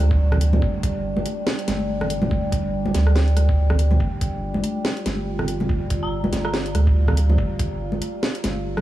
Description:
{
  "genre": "deep dubstep",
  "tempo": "142 BPM",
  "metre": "4/4",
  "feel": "swing 57% on 16ths, half-time",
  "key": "unclear",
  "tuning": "A4 = 440 Hz",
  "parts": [
    { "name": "dark detuned synth bell", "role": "melody", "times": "0.0-0.1, 6.0-6.8 s", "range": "Bb5", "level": "-38 LUFS", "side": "right 1 dB", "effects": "chorus, phaser, dub echo" },
    { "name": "overtone-sweeping drone", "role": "sustained chords", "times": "0.0-8.8 s", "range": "G3 to F4", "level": "-28 LUFS", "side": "right 1 dB", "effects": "chorus, built-in reverb" },
    { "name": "soft dub sub bass", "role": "bass", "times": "0.0-8.8 s", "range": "G1 to D2", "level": "-21 LUFS", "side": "right 1 dB", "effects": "none" },
    { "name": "electronic kick drum", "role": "drums", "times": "0.1-7.7 s", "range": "none", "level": "-24 LUFS", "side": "equal", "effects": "none" },
    { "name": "garage drum kit", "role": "drums", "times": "0.3-8.8 s", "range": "hi-hat, rim click, snare drum", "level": "-27 LUFS", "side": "equal", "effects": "none" },
    { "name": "congas", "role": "percussion", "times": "0.3-8.8 s", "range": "none", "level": "-28 LUFS", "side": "left 1 dB", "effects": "dub echo" }
  ],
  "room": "digital ambience",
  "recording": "none",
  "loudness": "-19 LUFS",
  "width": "side -14 dB against mid",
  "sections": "0.0-8.8 A section",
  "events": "none",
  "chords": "0.0 G5",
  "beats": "0.20 | 0.62 1.04 1.47 1.89 | 2.31 2.74 3.16 3.58 | 4.00 4.43 4.85 5.27 | 5.69 6.12 6.54 6.96 | 7.38 7.81 8.23 8.65"
}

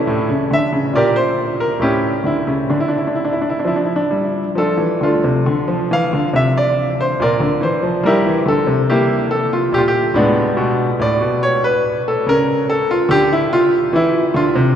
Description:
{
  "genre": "classical, baroque-style suite movement for grand piano",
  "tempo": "70 BPM",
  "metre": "3/4",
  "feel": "rubato",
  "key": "D minor",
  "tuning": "A4 = 440 Hz",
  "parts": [
    { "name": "bright grand piano", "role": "solo", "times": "0.0-14.8 s", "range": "A2 to F5", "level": "-14 LUFS", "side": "equal", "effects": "none" }
  ],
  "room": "wet cathedral reverb, RT60 7.1 s",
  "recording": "heard from further back in the room",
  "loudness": "-14 LUFS",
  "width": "side -9 dB against mid",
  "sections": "0.0-5.5 A section; 5.5-14.8 A section",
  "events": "none",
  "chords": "0.1 A; 0.9 Gm/Bb; 1.8 A7; 2.7 Dm; 7.2 Bb; 8.0 Edim; 10.6 Amaj9; 12.3 N.C.; 13.1 D5",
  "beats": "| 0.08 0.93 1.80 | 2.71 3.64 4.55 | 5.45 6.33 7.18 | 8.03 8.86 9.71 | 10.57 11.42 12.26 | 13.09 13.93"
}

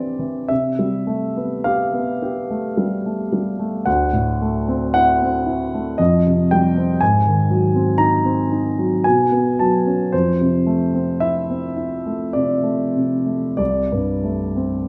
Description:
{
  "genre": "classical, impressionist solo piano",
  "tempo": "46-62 BPM",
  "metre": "3/4",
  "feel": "rubato",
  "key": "unclear",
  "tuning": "A4 = 440 Hz",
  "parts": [
    { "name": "warm grand piano", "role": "solo", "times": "0.0-14.9 s", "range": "C2 to Bb5", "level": "-19 LUFS", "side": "equal", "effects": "none" }
  ],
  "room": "moderate recital hall reverb, RT60 1.2 s",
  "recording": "none",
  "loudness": "-19 LUFS",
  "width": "mono",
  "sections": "0.0-14.9 A section",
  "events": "none",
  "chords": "0.0 Cadd9; 0.5 G9/C; 3.9 D9; 6.0 Fsus2; 7.0 Ab9; 9.0 Bsus2; 10.1 Fmaj7; 13.6 C5",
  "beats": "| 0.50 1.67 2.78 | 3.87 4.94 6.00 | 7.01 7.99 9.04 | 10.12 11.22 12.35 | 13.59"
}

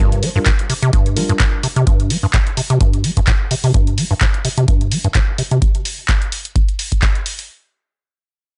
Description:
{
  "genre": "acid house",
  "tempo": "128 BPM",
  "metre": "4/4",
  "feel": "swing 55% on 16ths",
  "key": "G minor",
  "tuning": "A4 = 440 Hz",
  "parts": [
    { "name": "acid bass, square", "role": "riff", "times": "0.0-5.6 s", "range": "G2 to G3", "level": "-19 LUFS", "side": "equal", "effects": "tube saturation, sidechain pumping" },
    { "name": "mellow tine electric piano", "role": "stabs", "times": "0.0-1.4 s", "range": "G3 to Bb4", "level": "-27 LUFS", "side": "equal", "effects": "analog delay" },
    { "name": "punchy analog drum machine", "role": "drums", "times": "0.1-7.5 s", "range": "handclaps, hi-hat", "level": "-24 LUFS", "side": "equal", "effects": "none" },
    { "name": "electronic kick drum", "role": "drums", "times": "0.5-7.1 s", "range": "none", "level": "-18 LUFS", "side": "equal", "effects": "none" }
  ],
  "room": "digital ambience",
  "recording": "dry, gritty hardware recording, transformer saturation, nothing above 10.7 kHz",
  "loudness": "-16 LUFS",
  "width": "mono",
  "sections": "0.0-7.5 A section",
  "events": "filter sweep on acid bass 0.0-5.6",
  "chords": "none",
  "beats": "0.46 0.93 1.40 | 1.87 2.34 2.81 3.27 | 3.74 4.21 4.68 5.15 | 5.62 6.09 6.55 7.02"
}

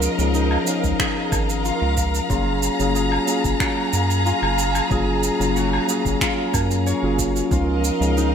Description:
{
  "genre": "sunset chillout",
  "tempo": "92 BPM",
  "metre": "4/4",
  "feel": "straight",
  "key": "F# major",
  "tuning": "A4 = 445 Hz",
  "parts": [
    { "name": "tine electric piano", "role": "accompaniment", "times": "0.0-8.3 s", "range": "E#3 to E#5", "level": "-23 LUFS", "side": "left 2 dB", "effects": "auto-pan, tape echo" },
    { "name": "warm symphonic string section", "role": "sustained chords", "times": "0.0-8.3 s", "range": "G#4 to A#5", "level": "-25 LUFS", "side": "equal", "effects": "none" },
    { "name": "concert harp", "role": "arpeggios", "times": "0.0-8.3 s", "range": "D#4 to C#5", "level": "-28 LUFS", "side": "left 3 dB", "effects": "vintage 12-bit sampler grit, tape echo" },
    { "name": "round analog bass", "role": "bass", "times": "0.0-8.3 s", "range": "F#1 to F#2", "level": "-23 LUFS", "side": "right 1 dB", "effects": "none" },
    { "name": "electronic shaker, woodblock and finger snaps", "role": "drums", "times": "0.0-8.3 s", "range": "none", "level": "-26 LUFS", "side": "right 2 dB", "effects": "none" },
    { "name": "electronic kick drum", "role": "drums", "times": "0.8-7.7 s", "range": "none", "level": "-26 LUFS", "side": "right 1 dB", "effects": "overdrive" },
    { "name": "twinkling granular texture", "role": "texture", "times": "7.7-8.3 s", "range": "E#5", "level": "-34 LUFS", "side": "equal", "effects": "built-in reverb" }
  ],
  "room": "wet lush hall reverb, RT60 1.8 s",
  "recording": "big arena sound",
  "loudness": "-18 LUFS",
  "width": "side -8 dB against mid",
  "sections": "0.0-8.3 A section",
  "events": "none",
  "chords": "0.0 C#13; 2.3 F#maj9; 7.5 C#13",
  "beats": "0.35 1.00 1.65 | 2.30 2.96 3.61 4.26 | 4.91 5.56 6.22 6.87 | 7.52 8.17"
}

